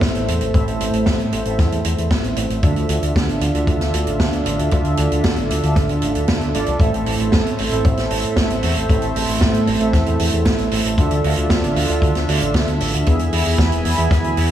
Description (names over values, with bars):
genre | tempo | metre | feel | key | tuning
italo disco | 115 BPM | 4/4 | straight | A minor | A4 = 438 Hz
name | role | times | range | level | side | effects
warm analog pad | sustained chords | 0.0-14.5 s | A3 to B5 | -23 LUFS | right 2 dB | chorus
analog synth brass | stabs | 0.0-14.5 s | A2 to E5 | -23 LUFS | right 1 dB | chorus, tape echo
fingered electric bass with an envelope filter | bass | 0.0-14.5 s | E1 to A2 | -22 LUFS | equal | none
kick drum | drums | 0.0-14.2 s | none | -19 LUFS | equal | none
open jazz drum kit | drums | 0.0-14.5 s | hi-hat, snare drum | -23 LUFS | right 2 dB | gated reverb
room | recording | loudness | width
light reverb, studio reverb | small room ambience | -16 LUFS | side -11 dB against mid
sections
0.0-14.5 A section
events
none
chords
0.0 Am; 2.6 Dmadd9; 6.8 Am; 11.0 Dmadd9; 13.1 E